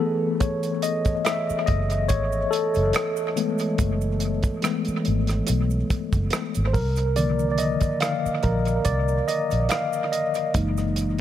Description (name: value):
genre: R&B, neo-soul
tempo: 71 BPM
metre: 4/4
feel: swing 54% on 16ths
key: unclear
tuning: A4 = 440 Hz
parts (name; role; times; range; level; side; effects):
- tine electric piano; accompaniment; 0.0-11.2 s; D3 to F5; -24 LUFS; left 2 dB; slow stereo tremolo, dub echo
- warm soul drum kit; drums; 0.4-11.2 s; hi-hat, kick drum, rim click; -26 LUFS; right 1 dB; dub echo
- maracas and finger snaps; percussion; 0.4-11.2 s; none; -39 LUFS; right 11 dB; dub echo
- vintage muted fingered electric bass; bass; 1.5-11.2 s; F#1 to C2; -24 LUFS; equal; none
room: small room reverb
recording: echo-heavy mix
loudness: -21 LUFS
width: side -11 dB against mid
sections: 0.0-11.2 A section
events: break 0.0-0.4; tine electric piano solo 0.0-11.2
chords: 0.0 F#m11; 6.7 Cm11; 10.5 F#13